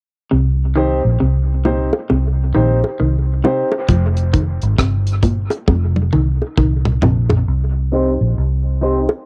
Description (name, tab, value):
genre	dub reggae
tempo	67 BPM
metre	4/4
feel	swing 63% on 16ths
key	C minor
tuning	A4 = 440 Hz
part	clean electric guitar	arpeggios	0.3-7.2 s	Bb2 to F3	-24 LUFS	equal	dub echo
part	vintage muted fingered electric bass	bass	0.3-9.1 s	F1 to C2	-18 LUFS	equal	tube saturation
part	warm concert grand piano	stabs	0.8-9.1 s	C4 to C5	-24 LUFS	equal	low-pass filter, dub echo, plate reverb
part	bongos	percussion	1.7-9.2 s	none	-24 LUFS	equal	dub echo
part	deep reggae drum kit	drums	3.9-7.5 s	hi-hat, kick drum, rim click, toms	-20 LUFS	equal	cassette tape
part	semi-hollow electric guitar	accompaniment	7.9-9.0 s	C4 to C5	-24 LUFS	equal	low-pass filter
room	light reverb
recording	home recording on cassette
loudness	-16 LUFS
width	mono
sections	0.3-7.5 A section; 7.5-9.3 B section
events	part muted 0.3-3.9; drum fill 5.7-7.5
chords	0.3 Cm; 3.9 F5; 7.5 Cm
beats	| 0.31 1.21 2.10 3.00 | 3.89 4.79 5.68 6.58 | 7.47 8.37